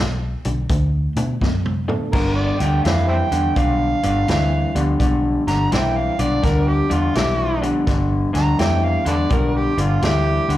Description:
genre	electric blues shuffle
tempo	84 BPM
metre	4/4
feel	swing 65% on 8ths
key	G mixolydian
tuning	A4 = 440 Hz
part	electric guitar through a small old amp	riff	0.0-10.6 s	G2 to B3	-21 LUFS	left 3 dB	slapback echo
part	vintage muted fingered electric bass	bass	0.0-10.6 s	G1 to B2	-21 LUFS	equal	none
part	vintage drum kit	drums	0.4-10.6 s	crash cymbal, hi-hat, kick drum, snare drum, toms	-24 LUFS	equal	none
part	reed electric piano	accompaniment	1.9-9.7 s	F3 to A4	-28 LUFS	right 3 dB	overdrive, slapback echo
part	overdriven harmonica	second line	2.1-10.5 s	F4 to Bb5	-23 LUFS	right 4 dB	slapback echo
room	little or no reverb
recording	live gig heard through the venue's PA, club reverb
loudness	-16 LUFS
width	side -14 dB against mid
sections	0.0-2.1 A section; 2.1-10.6 B section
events	drum fill 1.4-2.1; harmonica solo 2.1-10.6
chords	0.0 G; 0.7 D; 2.1 G9

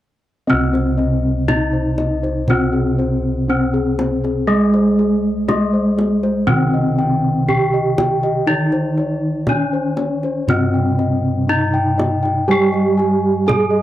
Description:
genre	Javanese gamelan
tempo	60 BPM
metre	4/4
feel	straight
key	C pelog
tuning	A4 = 440 Hz
part	gamelan-type bronze metallophone	melody	0.5-13.8 s	Ab3 to Ab4	-18 LUFS	equal	none
part	gamelan-type bronze metallophone	accompaniment	0.5-13.8 s	C3 to Ab3	-20 LUFS	right 2 dB	none
part	gamelan-type bossed gongs	arpeggios	0.5-13.8 s	Ab4 to Ab5	-23 LUFS	left 3 dB	none
part	gamelan-type bossed gongs	bass	0.5-13.8 s	C2 to Ab4	-23 LUFS	equal	none
part	kendang	percussion	0.7-13.7 s	none	-23 LUFS	right 1 dB	none
room	moderate spring reverb, RT60 2.1 s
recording	dry, gritty hardware recording, transformer saturation, cassette tape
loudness	-15 LUFS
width	side -13 dB against mid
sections	0.5-13.8 A section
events	none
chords	none

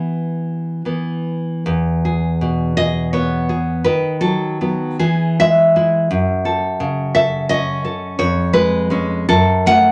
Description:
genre	romantic piece for solo classical guitar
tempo	47-59 BPM (dotted quarters)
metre	6/8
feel	rubato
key	E major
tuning	A4 = 440 Hz
part	nylon-string guitar	solo	0.0-9.9 s	E2 to F#5	-17 LUFS	equal	none
room	moderate club reverb, RT60 0.6 s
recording	none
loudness	-18 LUFS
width	mono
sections	0.0-1.7 A section; 1.7-9.9 B section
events	none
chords	0.0 Em; 1.7 E; 3.9 B7/D#; 5.0 E; 6.1 F#m; 8.2 C#7/E#; 9.3 F#m

